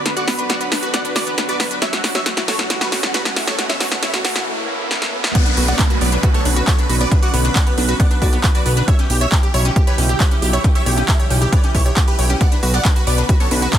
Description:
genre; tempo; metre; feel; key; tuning
uplifting trance; 136 BPM; 4/4; straight; B minor; A4 = 440 Hz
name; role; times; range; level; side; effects
lush unison pad; sustained chords; 0.0-13.8 s; B2 to G4; -27 LUFS; equal; chorus, sidechain pumping
riser and downlifter; sound effects; 1.3-8.9 s; none; -28 LUFS; right 2 dB; none
big supersaw lead; melody; 0.1-13.8 s; E4 to F#5; -23 LUFS; right 1 dB; phaser, sidechain pumping, low-pass filter, ping-pong delay
analog pluck; arpeggios; 0.1-13.8 s; A3 to C#5; -27 LUFS; left 2 dB; chorus, sidechain pumping, ping-pong delay
big-room dance drum kit; drums; 0.1-13.8 s; crash cymbal, handclaps, hi-hat, snare drum; -21 LUFS; right 1 dB; none
electronic kick drum; drums; 5.4-13.8 s; none; -15 LUFS; equal; none
fat analog bass; bass; 5.6-13.7 s; B1; -17 LUFS; equal; sidechain pumping
room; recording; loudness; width
little or no reverb; dense, heavily limited modern master, high-pass filter; -14 LUFS; side -10 dB against mid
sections
0.0-5.3 A section; 5.3-13.8 B section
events
build-up 0.0-5.3; drum fill 0.0-4.5, 4.9-5.3; riser 1.3-5.3; drop 5.3-13.8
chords
0.0 Bm; 1.8 F#m7/B; 5.3 Bmadd9; 8.9 C#dim/B; 12.4 Bmadd9

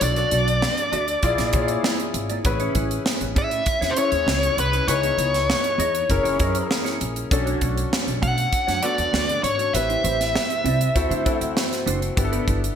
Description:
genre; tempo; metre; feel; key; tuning
polished 1980s jazz-funk pop; 99 BPM; 4/4; straight; unclear; A4 = 439 Hz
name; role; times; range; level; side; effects
nasal lead guitar with a parked wah; melody; 0.0-11.5 s; B4 to F#5; -23 LUFS; left 1 dB; overdrive
clear grand piano; accompaniment; 0.0-12.8 s; B3 to D5; -27 LUFS; left 4 dB; analog chorus
mellow electric guitar; riff; 0.0-12.7 s; A3 to E5; -31 LUFS; right 6 dB; analog chorus
upright bass; bass; 0.0-12.7 s; F#1 to D3; -26 LUFS; equal; none
crisp fusion drum kit; drums; 0.0-12.8 s; hi-hat, kick drum, snare drum; -25 LUFS; right 1 dB; gated reverb
room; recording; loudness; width
moderate plate reverb, RT60 1.3 s, small room ambience; bright 1980s-style digital production; -19 LUFS; side -8 dB against mid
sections
0.0-12.8 A section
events
none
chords
0.0 Bm7; 1.2 A#7#11; 2.4 Amaj7; 4.9 C#m7; 6.1 F#7; 7.3 Bm9; 9.7 Am7; 11.0 D7; 12.2 G6

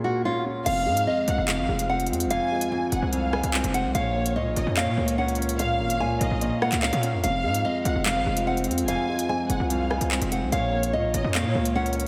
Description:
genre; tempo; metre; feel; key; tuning
hip hop, drill; 146 BPM; 4/4; half-time; F phrygian; A4 = 440 Hz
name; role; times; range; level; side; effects
nylon-string guitar; melody; 0.0-11.9 s; F4 to Ab5; -30 LUFS; equal; analog delay
dark concert grand piano; accompaniment; 0.0-12.1 s; F2 to Db4; -31 LUFS; equal; none
warm symphonic violin section; second line; 0.7-11.7 s; Db5 to Ab5; -34 LUFS; equal; analog delay
dark analog pad; sustained chords; 1.5-12.1 s; Ab3 to Db5; -36 LUFS; equal; chorus, phaser
distorted 808-style bass; bass; 0.7-12.1 s; F1 to Bb2; -30 LUFS; equal; distortion
drill drum kit; drums; 0.7-12.1 s; crash cymbal, handclaps, hi-hat, rim click; -32 LUFS; equal; none
room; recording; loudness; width
wet lush hall reverb, RT60 2.0 s, small room reverb; dreamy mix soaked in reverb; -25 LUFS; mono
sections
0.7-12.1 A section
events
break 0.0-0.7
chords
0.0 Bbm; 0.7 Fm; 3.9 Bbm; 7.2 Fm; 10.5 Bbm

